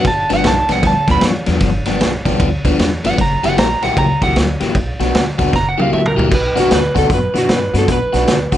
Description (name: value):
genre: electric blues shuffle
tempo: 153 BPM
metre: 4/4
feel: swing 64% on 8ths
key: B minor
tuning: A4 = 439 Hz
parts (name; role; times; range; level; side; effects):
- electric slide guitar; melody; 0.0-8.6 s; F#4 to B5; -17 LUFS; right 2 dB; none
- overdriven electric guitar; riff; 0.0-8.6 s; G2 to G4; -18 LUFS; left 3 dB; phaser
- upright bass; bass; 0.0-8.6 s; F#1 to G2; -20 LUFS; equal; none
- vintage drum kit; drums; 0.0-8.6 s; crash cymbal, hi-hat, kick drum, ride cymbal, snare drum, toms; -17 LUFS; right 1 dB; none
room: light reverb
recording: nothing above 10.3 kHz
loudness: -12 LUFS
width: side -12 dB against mid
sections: 0.0-6.3 A section; 6.3-8.6 B section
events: drum fill 5.5-6.3; electric slide guitar solo 6.3-8.6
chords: 0.1 G7; 3.2 F#7b9; 4.8 Bm; 5.5 F#7b9; 6.3 Bm